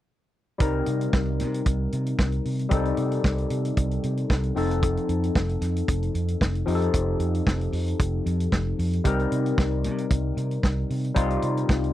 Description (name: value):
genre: disco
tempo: 114 BPM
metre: 4/4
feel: straight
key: C dorian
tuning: A4 = 440 Hz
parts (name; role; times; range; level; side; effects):
- overdriven tine electric piano; accompaniment; 0.6-11.9 s; F3 to Bb4; -27 LUFS; left 3 dB; phaser
- fingered electric bass; bass; 0.6-11.9 s; F1 to C3; -26 LUFS; right 1 dB; none
- warm soul drum kit; drums; 0.6-11.9 s; hi-hat, kick drum, snare drum; -24 LUFS; right 1 dB; none
room: little or no reverb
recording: dry, close 1970s-style studio recording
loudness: -22 LUFS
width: side -13 dB against mid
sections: 0.6-11.9 A section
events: none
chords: 0.6 Cm7; 4.6 F7; 9.1 Cm7